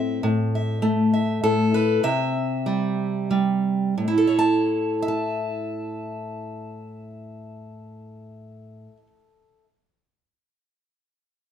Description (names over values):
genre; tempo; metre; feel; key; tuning
folk, solo fingerstyle acoustic guitar; 58-68 BPM (dotted quarters); 6/8; straight; A minor; A4 = 440 Hz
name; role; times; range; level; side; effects
fingerpicked steel-string acoustic guitar; solo; 0.0-9.7 s; A2 to A5; -22 LUFS; equal; none
room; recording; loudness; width
light reverb; none; -20 LUFS; side -9 dB against mid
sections
0.2-4.0 A section; 4.0-8.1 B section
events
slowing down 0.2-4.0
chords
0.2 A5; 2.0 C; 4.0 A